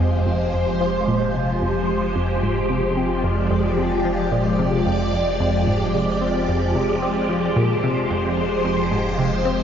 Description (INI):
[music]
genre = ambient, sequencer-driven space music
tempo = 111 BPM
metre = 4/4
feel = straight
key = F dorian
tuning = A4 = 440 Hz
[part]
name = phased string machine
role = sustained chords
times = 0.0-9.6 s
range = F3 to D5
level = -21 LUFS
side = equal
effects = ensemble chorus, phaser, shimmer reverb
[part]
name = tight sequenced synth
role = riff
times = 0.0-9.6 s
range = F2 to C4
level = -22 LUFS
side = equal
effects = chorus, phaser, analog delay
[part]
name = warm sub bass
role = bass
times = 0.0-9.6 s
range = F1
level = -31 LUFS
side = equal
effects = none
[sound]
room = wet huge ambient reverb, RT60 8.3 s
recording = dreamy mix soaked in reverb, nothing above 7.5 kHz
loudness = -18 LUFS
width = side -8 dB against mid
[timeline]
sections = 0.0-9.6 A section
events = none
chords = 0.0 Fmadd9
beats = 0.54 | 1.08 1.62 2.16 2.70 | 3.24 3.78 4.32 4.86 | 5.40 5.94 6.48 7.02 | 7.56 8.10 8.64 9.18